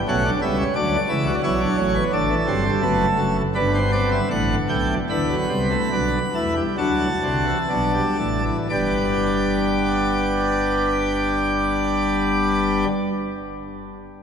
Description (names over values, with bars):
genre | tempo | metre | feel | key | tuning
classical, baroque-style 4-part fugue for pipe organ | 58-89 BPM | 4/4 | straight | G major | A4 = 442 Hz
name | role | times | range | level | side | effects
pipe organ, plenum | solo | 0.1-12.9 s | F#1 to B5 | -19 LUFS | equal | none
room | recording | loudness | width
wet cathedral reverb, RT60 4.6 s | minimal, uncompressed stereo recording | -19 LUFS | side -7 dB against mid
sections
0.0-8.7 A section; 8.7-12.9 B section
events
slowing down 0.8-8.7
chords
0.0 G; 0.8 D; 2.1 D7; 3.6 G; 6.8 D7; 8.7 G